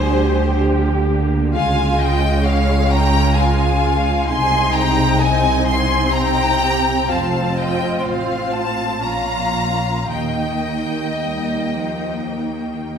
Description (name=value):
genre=classical, slow romantic movement for string orchestra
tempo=46-67 BPM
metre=3/4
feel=rubato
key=Ab major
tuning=A4 = 443 Hz
part: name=rich studio violin section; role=melody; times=0.0-12.9 s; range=C5 to C6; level=-22 LUFS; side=left 3 dB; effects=none
part: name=rich studio violin section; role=second line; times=0.0-12.9 s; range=Ab4 to Ab5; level=-24 LUFS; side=left 2 dB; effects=none
part: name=warm studio viola section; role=accompaniment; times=0.0-13.0 s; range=F3 to G4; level=-23 LUFS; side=right 2 dB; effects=none
part: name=warm studio cello section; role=bass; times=0.0-13.0 s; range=F2 to G3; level=-24 LUFS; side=right 1 dB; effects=none
part: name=warm studio double bass section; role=bass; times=0.0-13.0 s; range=F1 to Eb2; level=-21 LUFS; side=right 1 dB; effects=none
room=wet recital hall reverb, RT60 1.7 s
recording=recorded in a church or concert hall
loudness=-16 LUFS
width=side -7 dB against mid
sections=0.0-13.0 A section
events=none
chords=0.0 Bb/D; 1.5 Db; 4.3 Ab/C; 7.1 F; 9.0 Bbm; 10.1 Eb